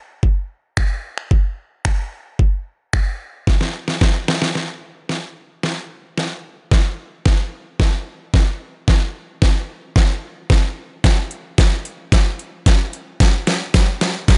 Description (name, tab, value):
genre	pop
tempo	111 BPM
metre	4/4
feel	straight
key	none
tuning	none
part	smooth R&B drum kit	drums	0.2-14.4 s	finger snaps, hi-hat, kick drum, snare drum	-17 LUFS	equal	none
part	tambourine	percussion	13.2-14.4 s	none	-39 LUFS	equal	none
room	digital ambience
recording	nothing above 10.7 kHz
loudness	-20 LUFS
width	mono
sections	0.0-4.6 A section; 4.6-14.4 B section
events	drum fill 3.5-4.6, 4.6-14.4; build-up 4.6-14.4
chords	none